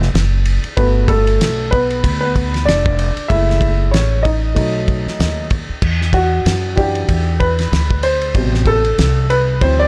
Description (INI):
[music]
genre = hip hop, jazz-hop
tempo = 95 BPM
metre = 4/4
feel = swing 58% on 16ths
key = E minor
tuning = A4 = 441 Hz
[part]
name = upright bass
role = bass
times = 0.0-9.9 s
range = F1 to F#2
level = -19 LUFS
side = equal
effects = tube saturation
[part]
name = cloth-damped thuddy drum kit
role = drums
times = 0.0-9.8 s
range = crash cymbal, hi-hat, kick drum, ride cymbal, snare drum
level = -22 LUFS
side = equal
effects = none
[part]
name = warm upright piano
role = accompaniment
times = 0.8-9.9 s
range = B2 to E5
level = -20 LUFS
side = equal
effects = none
[sound]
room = small room ambience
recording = dry, gritty hardware recording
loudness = -16 LUFS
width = mono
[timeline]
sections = 0.0-5.8 A section; 5.8-9.9 B section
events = upright piano solo 0.0-5.8, 5.8-9.9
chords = 0.0 N.C.; 0.8 Gmaj7; 3.3 F#m7; 4.6 B7; 5.8 Em7; 8.4 Am7